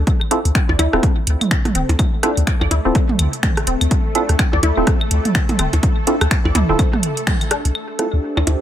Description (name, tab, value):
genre	minimal techno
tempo	125 BPM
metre	4/4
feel	swing 59% on 16ths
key	D minor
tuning	A4 = 437 Hz
part	punchy sub bass	bass	0.0-8.6 s	D1 to D2	-17 LUFS	equal	sidechain pumping
part	booming analog drum machine	drums	0.1-8.6 s	finger snaps, hi-hat	-23 LUFS	right 1 dB	overdrive
part	electronic kick drum	drums	0.1-7.4 s	none	-17 LUFS	equal	overdrive
part	swarming drone	texture	1.4-8.6 s	A3 to A4	-29 LUFS	left 1 dB	built-in reverb, sidechain pumping
part	minimal click drum kit	percussion	0.2-8.6 s	claves, percussion blips, rim click, toms	-22 LUFS	right 2 dB	dub echo
part	resonant blip pluck	riff	0.3-8.6 s	C4 to D5	-25 LUFS	left 3 dB	phaser, analog chorus, sidechain pumping, tape echo
part	percussive organ stab	stabs	0.3-8.1 s	C4 to A4	-24 LUFS	right 3 dB	chorus, dub echo
part	airy breathy pad	texture	7.9-8.6 s	D4 to E5	-26 LUFS	right 2 dB	chorus, sidechain pumping
room	light reverb, digital ambience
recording	none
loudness	-15 LUFS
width	side -11 dB against mid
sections	0.0-7.8 A section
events	band accent 7.3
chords	0.0 Dm7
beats	| 0.07 0.55 1.03 1.51 | 1.99 2.47 2.95 3.43 | 3.91 4.39 4.87 5.35 | 5.83 6.31 6.79 7.27 | 7.75 8.23